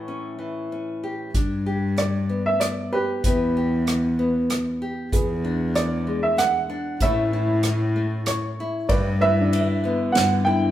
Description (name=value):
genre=acoustic folk-pop ballad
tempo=95 BPM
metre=3/4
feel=straight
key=unclear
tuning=A4 = 440 Hz
part: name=warm upright piano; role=melody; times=0.0-10.7 s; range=G4 to G5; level=-24 LUFS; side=right 2 dB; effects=none
part: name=nylon-string guitar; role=accompaniment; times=0.0-10.7 s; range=E2 to G4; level=-26 LUFS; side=left 1 dB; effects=none
part: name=warm cello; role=bass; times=1.3-10.6 s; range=E2 to A2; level=-24 LUFS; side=left 1 dB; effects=none
part: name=unplugged drum kit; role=drums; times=1.3-10.3 s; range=hi-hat, kick drum, ride cymbal, rim click, snare drum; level=-26 LUFS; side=equal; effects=none
part: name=felt-muted upright piano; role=arpeggios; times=5.1-10.7 s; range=D4 to E5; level=-31 LUFS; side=right 2 dB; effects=none
room=wet large studio reverb, RT60 1.3 s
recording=band playing live in one room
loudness=-20 LUFS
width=side -12 dB against mid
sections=0.0-1.3 A section; 1.3-8.9 B section; 8.9-10.7 C section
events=none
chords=0.0 A7; 1.3 G; 3.2 Em; 5.1 E7; 7.0 A; 8.9 G6